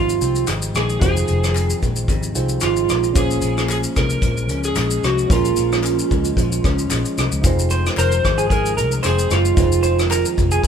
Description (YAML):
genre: indie pop, bedroom pop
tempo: 112 BPM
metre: 4/4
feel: swing 55% on 16ths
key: unclear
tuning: A4 = 440 Hz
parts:
  - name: electric slide guitar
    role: melody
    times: 0.0-10.7 s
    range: F4 to C5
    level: -21 LUFS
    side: right 4 dB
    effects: none
  - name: electric guitar through a small old amp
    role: accompaniment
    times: 0.0-10.7 s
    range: F2 to Db4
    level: -26 LUFS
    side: left 3 dB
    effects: vibrato effect
  - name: reed electric piano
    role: accompaniment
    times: 0.0-10.7 s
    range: Db4 to C5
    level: -29 LUFS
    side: right 5 dB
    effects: none
  - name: vintage muted fingered electric bass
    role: bass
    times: 0.0-10.7 s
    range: F1 to Db2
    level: -21 LUFS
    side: left 1 dB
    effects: none
  - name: soft brush drum kit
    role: drums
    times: 0.1-10.7 s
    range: hi-hat, kick drum, rim click, shaker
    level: -21 LUFS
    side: left 1 dB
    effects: none
  - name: group handclap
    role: percussion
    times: 0.5-10.2 s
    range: none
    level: -33 LUFS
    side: left 4 dB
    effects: none
  - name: electric guitar through a small old amp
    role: second line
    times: 7.7-10.7 s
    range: Ab4 to C5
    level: -23 LUFS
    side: right 2 dB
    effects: none
room: light reverb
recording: band playing live in one room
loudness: -16 LUFS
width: side -8 dB against mid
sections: 0.0-7.4 A section; 7.4-10.7 B section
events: none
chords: 0.0 Fm7; 3.2 Bbm7; 7.4 Fm7